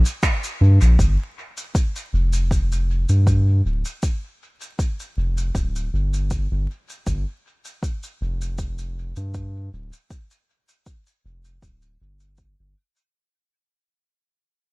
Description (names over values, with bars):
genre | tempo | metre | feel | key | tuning
ambient dub | 79 BPM | 4/4 | swing 53% on 16ths | G minor | A4 = 439 Hz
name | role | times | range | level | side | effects
soft dub sub bass | bass | 0.0-12.7 s | D1 to G2 | -18 LUFS | equal | none
shaker and finger snaps | drums | 0.1-13.1 s | none | -31 LUFS | right 1 dB | dub echo
electronic kick drum | drums | 0.2-12.5 s | none | -22 LUFS | equal | none
room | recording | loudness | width
little or no reverb | echo-heavy mix, vinyl crackle | -19 LUFS | side -26 dB against mid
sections
1.0-13.1 A section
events
fade-out 1.0-13.1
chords
none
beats
0.23 | 0.99 1.75 2.51 3.27 | 4.03 4.79 5.55 6.31 | 7.07 7.83 8.59 9.35 | 10.11 10.87 11.63 12.38